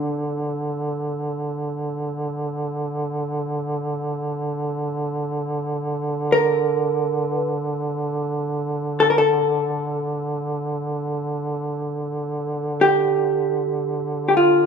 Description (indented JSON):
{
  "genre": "caucasian folk, Caucasian lament",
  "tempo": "free time",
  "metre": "none",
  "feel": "none",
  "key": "unclear",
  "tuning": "A4 = 440 Hz",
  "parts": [
    { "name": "vintage hollow-body jazz guitar", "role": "melody", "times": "0.0-14.7 s", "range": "D4 to Bb4", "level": "-18 LUFS", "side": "equal", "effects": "none" },
    { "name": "mellow duduk", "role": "drone", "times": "0.0-14.7 s", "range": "D3", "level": "-24 LUFS", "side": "right 1 dB", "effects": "none" }
  ],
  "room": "wet recital hall reverb, RT60 1.8 s",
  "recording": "minimal, uncompressed stereo recording",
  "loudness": "-21 LUFS",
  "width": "side -6 dB against mid",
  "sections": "0.0-14.7 A section",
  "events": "none",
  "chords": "none"
}